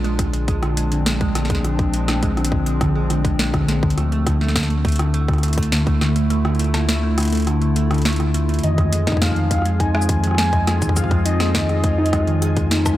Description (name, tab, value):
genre	IDM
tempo	103 BPM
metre	4/4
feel	straight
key	unclear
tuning	A4 = 441 Hz
part	warbly tape-like pad	sustained chords	0.0-13.0 s	Bb2 to Ab4	-26 LUFS	left 2 dB	chorus, built-in reverb, sidechain pumping
part	harp-like synth pluck	arpeggios	0.0-12.9 s	D3 to Eb4	-22 LUFS	right 1 dB	chorus, phaser, analog delay
part	warm sub bass	bass	0.0-13.0 s	Bb1 to F2	-21 LUFS	equal	tube saturation
part	booming analog drum machine	drums	0.0-13.0 s	hi-hat, rim click, shaker, snare drum	-24 LUFS	equal	none
part	electronic kick drum	drums	0.2-13.0 s	none	-22 LUFS	equal	overdrive
part	warm velvety synth lead	melody	8.6-13.0 s	Eb5 to Ab5	-25 LUFS	equal	chorus, tape echo
part	bubbling stepped-filter texture	texture	8.6-13.0 s	F4 to Ab5	-35 LUFS	equal	chorus, built-in reverb
room	light reverb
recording	dry, gritty hardware recording, transformer saturation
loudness	-16 LUFS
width	side -14 dB against mid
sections	0.0-13.0 A section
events	kick drops out 6.3-8.6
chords	0.0 Bb9; 4.0 Dm7; 8.6 Fm7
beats	0.48 1.06 | 1.64 2.23 2.81 3.39 | 3.97 4.56 5.14 5.72 | 6.30 6.89 7.47 8.05 | 8.63 9.22 9.80 10.38 | 10.96 11.55 12.13 12.71